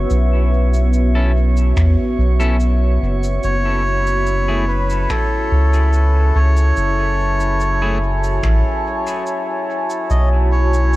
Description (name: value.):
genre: ambient dub.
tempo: 72 BPM.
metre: 4/4.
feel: straight.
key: F# minor.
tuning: A4 = 440 Hz.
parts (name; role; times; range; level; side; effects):
deep dark ambient pad; sustained chords; 0.0-11.0 s; B3 to A5; -23 LUFS; equal; chorus, built-in reverb, cassette tape.
soft dub sub bass; bass; 0.0-11.0 s; F#1 to E2; -15 LUFS; equal; tube saturation.
drifting glass-harmonics texture; texture; 0.0-11.0 s; E4 to C#5; -27 LUFS; left 2 dB; chorus, built-in reverb, cassette tape.
electronic shaker and finger snaps; drums; 0.1-11.0 s; none; -34 LUFS; equal; cassette tape, dub echo.
semi-hollow electric guitar; stabs; 1.2-8.0 s; A3 to A4; -31 LUFS; left 2 dB; vintage 12-bit sampler grit, cassette tape, dub echo.
electronic kick drum; drums; 1.8-8.6 s; none; -22 LUFS; equal; cassette tape.
melodica; melody; 3.4-11.0 s; A4 to D#5; -21 LUFS; equal; cassette tape, dub echo.
room: digital ambience.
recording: home recording on cassette.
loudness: -14 LUFS.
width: side -17 dB against mid.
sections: 0.0-11.0 A section.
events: none.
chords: 0.0 F#m7.